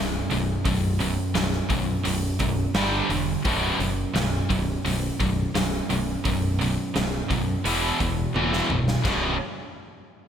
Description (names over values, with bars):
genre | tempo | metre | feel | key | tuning
heavy metal | 86 BPM | 4/4 | straight | B minor | A4 = 441 Hz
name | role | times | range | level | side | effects
heavy high-gain guitar | riff | 0.0-9.3 s | B1 to G3 | -28 LUFS | left 8 dB | distortion
scooped high-gain guitar | riff | 0.0-9.3 s | B1 to G3 | -27 LUFS | right 6 dB | distortion
growling fingered electric bass | bass | 0.0-9.4 s | B0 to B1 | -29 LUFS | equal | overdrive
big rock drum kit | drums | 0.3-9.2 s | crash cymbal, hi-hat, kick drum, snare drum, toms | -29 LUFS | equal | gated reverb
room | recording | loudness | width
light reverb | bright 1980s-style digital production | -22 LUFS | side -8 dB against mid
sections
0.0-9.0 A section; 9.0-10.3 B section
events
drum fill 8.3-9.0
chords
0.0 B5; 2.8 G5; 3.5 B5; 7.6 E5; 9.0 B5